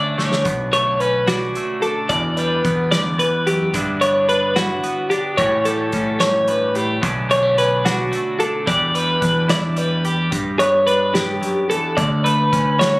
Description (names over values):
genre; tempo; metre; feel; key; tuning
math rock and midwest emo; 73 BPM (dotted quarters); 6/8; straight; unclear; A4 = 439 Hz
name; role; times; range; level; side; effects
twelve-string electric guitar; accompaniment; 0.0-13.0 s; D2 to G4; -24 LUFS; right 2 dB; none
twelve-string electric guitar; arpeggios; 0.0-13.0 s; F#4 to D5; -18 LUFS; equal; spring reverb
growling picked electric bass; bass; 0.0-13.0 s; B1 to A2; -23 LUFS; equal; overdrive
loose indie drum kit; drums; 0.2-12.9 s; hi-hat, kick drum, snare drum; -25 LUFS; equal; none
room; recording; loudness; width
light reverb; recorded on a phone in the room, club reverb, compression; -16 LUFS; side -22 dB against mid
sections
0.5-13.0 A section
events
drum fill 0.2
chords
0.5 Bm9; 2.1 Em7; 3.7 G6; 5.4 A13; 7.0 Bm9; 8.7 Em7; 10.3 G69; 12.0 Dmaj7